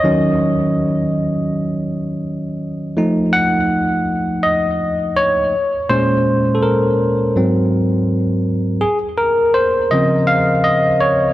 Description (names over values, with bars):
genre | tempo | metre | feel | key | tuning
R&B | 82 BPM | 4/4 | straight | Db major | A4 = 441 Hz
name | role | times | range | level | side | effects
barky tine electric piano | solo | 0.0-11.3 s | Ab2 to Gb5 | -14 LUFS | equal | tape echo
room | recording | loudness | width
moderate lush hall reverb, RT60 3.1 s | worn, warbling old tape, cassette tape, warbly pitch drift | -14 LUFS | side -15 dB against mid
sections
0.0-8.8 A section; 8.8-11.3 B section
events
tine electric piano solo 0.0-8.8, 8.8-11.3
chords
0.0 Ebm7; 3.0 F7b9; 5.5 Bbm9; 7.4 Ab9; 8.8 Dbmaj7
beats
| 0.04 0.78 1.51 2.24 | 2.97 3.70 4.43 5.17 | 5.90 6.63 7.36 8.09 | 8.82 9.55 10.29 11.02